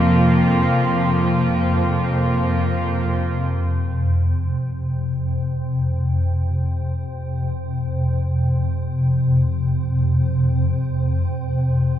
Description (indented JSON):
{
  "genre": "dark ambient drone",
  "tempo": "free time",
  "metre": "none",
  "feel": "none",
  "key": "unclear",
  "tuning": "A4 = 437 Hz",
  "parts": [
    { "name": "rich chamber cello section", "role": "sustained chords", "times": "0.0-3.4 s", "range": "F2 to F4", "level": "-19 LUFS", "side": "right 1 dB", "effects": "none" },
    { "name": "swarming drone", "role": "drone", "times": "0.0-12.0 s", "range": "F2 to C3", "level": "-19 LUFS", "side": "equal", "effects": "built-in reverb" }
  ],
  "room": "moderate lush hall reverb, RT60 2.7 s",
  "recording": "dreamy mix soaked in reverb, cassette tape",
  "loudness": "-18 LUFS",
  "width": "side -10 dB against mid",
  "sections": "0.0-3.4 A section; 3.4-12.0 B section",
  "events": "none",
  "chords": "0.0 Bb5/F; 3.4 F5"
}